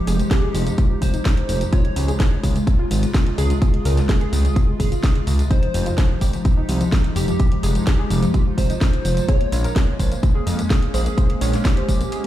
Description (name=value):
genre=progressive house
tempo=127 BPM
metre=4/4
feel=straight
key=F minor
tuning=A4 = 441 Hz
part: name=plucky unison lead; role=melody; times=0.0-12.3 s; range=G4 to Db5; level=-30 LUFS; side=right 1 dB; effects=wide subtle chorus, dub echo
part: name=evolving wavetable pad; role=sustained chords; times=0.0-12.3 s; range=C3 to G4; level=-28 LUFS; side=right 1 dB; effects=chorus, built-in reverb, sidechain pumping
part: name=soft round pluck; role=arpeggios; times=0.0-12.3 s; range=F3 to Db5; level=-27 LUFS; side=left 1 dB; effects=wide subtle chorus, sidechain pumping, ping-pong delay
part: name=fat analog bass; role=bass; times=0.1-12.0 s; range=F1 to F2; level=-20 LUFS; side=equal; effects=sidechain pumping
part: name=house drum kit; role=drums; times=0.1-12.3 s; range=hi-hat, snare drum, tambourine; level=-29 LUFS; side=equal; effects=none
part: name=electronic kick drum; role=drums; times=0.3-12.0 s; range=none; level=-18 LUFS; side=equal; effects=none
room=digital ambience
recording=played on a big sound system in a bare room, large studio reverb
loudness=-16 LUFS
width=side -13 dB against mid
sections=0.0-12.3 A section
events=none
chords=0.0 Fm9; 1.7 Dbmaj7; 5.5 Fm9; 9.3 Bbm7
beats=0.31 0.78 1.25 | 1.73 2.20 2.67 3.14 | 3.62 4.09 4.56 5.03 | 5.51 5.98 6.45 6.92 | 7.40 7.87 8.34 8.81 | 9.29 9.76 10.23 10.70 | 11.18 11.65 12.12